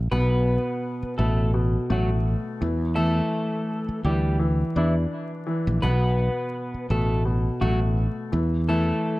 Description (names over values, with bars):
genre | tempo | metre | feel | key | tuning
hip hop, boom-bap hip-hop | 84 BPM | 4/4 | swing 56% on 16ths | B minor | A4 = 438 Hz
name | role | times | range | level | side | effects
fretless electric bass | bass | 0.0-8.9 s | A1 to E2 | -22 LUFS | equal | none
electric guitar at the edge of break-up | melody | 0.1-9.2 s | E3 to B4 | -28 LUFS | equal | spring reverb, high-pass filter, low-pass filter, plate reverb
dark baby grand piano | accompaniment | 0.1-9.2 s | B2 to D4 | -27 LUFS | left 1 dB | high-pass filter, low-pass filter, plate reverb
room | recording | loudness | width
moderate studio reverb, RT60 0.6 s | vinyl crackle | -22 LUFS | side -19 dB against mid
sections
0.0-9.2 A section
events
none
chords
0.1 B5; 2.6 E7(no3); 5.8 B5; 8.3 N.C.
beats
| 0.11 0.83 1.54 2.25 | 2.97 3.68 4.40 5.11 | 5.83 6.54 7.25 7.97 | 8.68